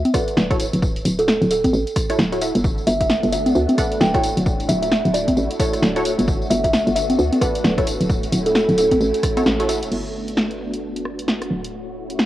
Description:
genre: UK garage, two-step garage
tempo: 132 BPM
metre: 4/4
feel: swing 60% on 16ths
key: G lydian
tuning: A4 = 437 Hz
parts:
  - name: hollow knocking FM bass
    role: bass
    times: 0.0-12.3 s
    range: D1 to D2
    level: -22 LUFS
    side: equal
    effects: none
  - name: kalimba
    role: melody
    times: 0.1-9.2 s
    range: A4 to G5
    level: -22 LUFS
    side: right 1 dB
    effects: cassette tape, analog delay
  - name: punchy chord stab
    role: stabs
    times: 0.1-9.8 s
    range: E4 to F#5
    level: -25 LUFS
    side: equal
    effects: chorus, cassette tape, analog delay
  - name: electronic kick drum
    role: drums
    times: 0.1-9.3 s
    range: none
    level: -22 LUFS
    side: equal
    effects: none
  - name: punchy analog drum machine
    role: drums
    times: 0.1-12.3 s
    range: congas, crash cymbal, hi-hat, rim click, snare drum, tambourine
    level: -22 LUFS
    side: equal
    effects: none
  - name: soft string machine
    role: sustained chords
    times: 2.6-12.3 s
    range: A3 to F#4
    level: -27 LUFS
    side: equal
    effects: ensemble chorus, sidechain pumping, cassette tape
room: moderate spring reverb, RT60 2.1 s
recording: home recording on cassette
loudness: -17 LUFS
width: side -14 dB against mid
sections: 0.0-9.9 A section; 9.9-12.3 B section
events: band accent 9.5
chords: 0.0 Gmaj9 (rootless); 0.6 Dadd9; 2.6 Gmaj9; 4.2 Dmaj9; 6.3 Gmaj9; 7.9 Dmaj9; 9.9 Gmaj9; 11.5 Dmaj9

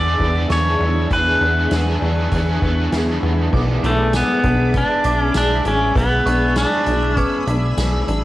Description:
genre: dream pop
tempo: 99 BPM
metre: 4/4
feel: straight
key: unclear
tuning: A4 = 441 Hz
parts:
  - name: pedal steel guitar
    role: melody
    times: 0.0-7.4 s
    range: A3 to D5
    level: -19 LUFS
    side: equal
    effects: cassette tape, analog delay
  - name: biting overdriven guitar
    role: accompaniment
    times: 0.0-4.1 s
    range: E3 to G#4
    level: -26 LUFS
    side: right 1 dB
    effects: harmonic tremolo, analog chorus, cassette tape
  - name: string machine, full ensemble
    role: sustained chords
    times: 0.0-8.2 s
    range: D4 to E6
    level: -25 LUFS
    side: equal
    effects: ensemble chorus, cassette tape
  - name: semi-hollow electric guitar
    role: arpeggios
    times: 0.0-8.2 s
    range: B3 to G#4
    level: -27 LUFS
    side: left 3 dB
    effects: analog chorus, cassette tape, analog delay
  - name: plucky analog bass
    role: bass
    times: 0.0-8.2 s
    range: A1 to E2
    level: -19 LUFS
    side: equal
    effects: none
  - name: soft synth bell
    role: texture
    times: 0.0-8.2 s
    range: G#5 to E6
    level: -32 LUFS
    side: right 2 dB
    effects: chorus, cassette tape, analog delay
  - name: soft-mallet drum kit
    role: drums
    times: 0.2-8.2 s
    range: crash cymbal, hi-hat, kick drum, snare drum, tambourine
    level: -25 LUFS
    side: equal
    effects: cassette tape
room: light reverb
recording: home recording on cassette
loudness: -15 LUFS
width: side -16 dB against mid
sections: 0.0-3.5 A section; 3.5-8.2 B section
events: none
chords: 0.0 E7

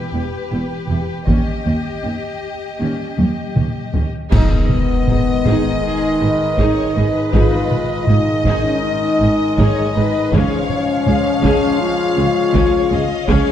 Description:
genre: cinematic, epic orchestral film score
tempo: 80 BPM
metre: 4/4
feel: straight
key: G# dorian from 4.3 s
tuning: A4 = 443 Hz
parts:
  - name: rich symphonic violin section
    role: melody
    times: 0.0-13.5 s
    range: B4 to E#5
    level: -28 LUFS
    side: left 3 dB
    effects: none
  - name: rich symphonic violin section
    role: second line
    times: 0.0-13.5 s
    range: G4 to E#5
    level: -27 LUFS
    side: left 3 dB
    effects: none
  - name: warm symphonic viola section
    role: accompaniment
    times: 0.0-13.5 s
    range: C#4 to G#4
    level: -25 LUFS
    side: right 1 dB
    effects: none
  - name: dark French horn section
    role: sustained chords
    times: 0.0-13.5 s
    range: G3 to G#4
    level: -20 LUFS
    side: left 4 dB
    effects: none
  - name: rich studio cello section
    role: bass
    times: 0.1-13.4 s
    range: C#2 to G#2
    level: -22 LUFS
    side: right 2 dB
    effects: none
  - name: warm symphonic double bass section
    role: bass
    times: 0.1-13.4 s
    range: E1 to D#2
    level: -23 LUFS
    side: right 2 dB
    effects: none
  - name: taiko ensemble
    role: drums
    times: 1.3-13.5 s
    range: none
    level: -20 LUFS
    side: equal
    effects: none
  - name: bright trombone section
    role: sustained chords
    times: 4.3-13.5 s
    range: D#3 to G#3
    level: -25 LUFS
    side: right 2 dB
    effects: none
  - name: mellow trumpet section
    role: stabs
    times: 4.3-13.5 s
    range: C#5 to D#5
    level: -25 LUFS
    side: equal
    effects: none
  - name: clash cymbals and concert bass drum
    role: percussion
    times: 4.3-5.8 s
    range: none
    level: -21 LUFS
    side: equal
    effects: none
  - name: impact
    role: sound effects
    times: 4.5-7.3 s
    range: none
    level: barely audible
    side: none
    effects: none
room: wet concert hall reverb, RT60 2.4 s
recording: dark, warm production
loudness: -14 LUFS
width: side -10 dB against mid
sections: 0.0-4.3 A section; 4.3-13.5 B section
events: build-up 0.0-4.3; drum fill 3.2-4.3; band accent 4.3-5.1; impact 4.3-7.3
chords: 0.0 Em; 1.3 D#7; 4.3 G#m; 10.3 C#

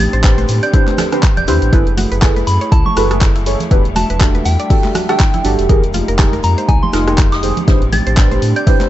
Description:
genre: deep house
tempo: 121 BPM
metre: 4/4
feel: swing 57% on 16ths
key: unclear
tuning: A4 = 440 Hz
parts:
  - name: soft synth bell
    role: melody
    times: 0.0-8.7 s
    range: G5 to A6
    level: -21 LUFS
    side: equal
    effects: chorus, digital delay
  - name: dark analog pad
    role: sustained chords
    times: 0.0-8.9 s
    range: G3 to E5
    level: -26 LUFS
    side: equal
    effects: chorus, sidechain pumping
  - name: mallet-like synth pluck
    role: arpeggios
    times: 0.0-8.7 s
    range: Eb4 to D5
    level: -26 LUFS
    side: left 1 dB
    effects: chorus, sidechain pumping, digital delay
  - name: sub bass with octave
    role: bass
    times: 0.0-8.5 s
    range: E1 to A2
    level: -17 LUFS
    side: equal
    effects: sidechain pumping
  - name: deep house drum kit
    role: drums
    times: 0.1-8.9 s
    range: handclaps, hi-hat, rim click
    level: -22 LUFS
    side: equal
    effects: none
  - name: tube shaker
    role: percussion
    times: 0.1-8.8 s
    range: none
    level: -36 LUFS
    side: right 2 dB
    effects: none
  - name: deep mellow chord stab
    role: stabs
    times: 0.2-8.9 s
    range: D4 to C#5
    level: -19 LUFS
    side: right 1 dB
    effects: chorus, phaser, digital delay
  - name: electronic kick drum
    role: drums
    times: 0.2-8.8 s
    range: none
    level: -12 LUFS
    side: equal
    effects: none
  - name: soft-mallet drum kit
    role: drums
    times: 0.2-8.8 s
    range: hi-hat, ride cymbal, snare drum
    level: -31 LUFS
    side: left 2 dB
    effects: sidechain pumping on cymbals, high-pass filter on cymbals, sidechain pumping on hats, high-pass filter on hats, high-pass filter on snare, high-pass filter on room
  - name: congas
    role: percussion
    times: 0.4-8.9 s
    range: none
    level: -24 LUFS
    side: right 3 dB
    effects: none
room: small room ambience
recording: dark, warm production, nothing above 8.0 kHz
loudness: -11 LUFS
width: side -13 dB against mid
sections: 0.0-8.9 A section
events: none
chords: 0.0 Am11; 1.7 F#m11; 3.7 Em11; 5.7 Fm11; 7.7 Am11

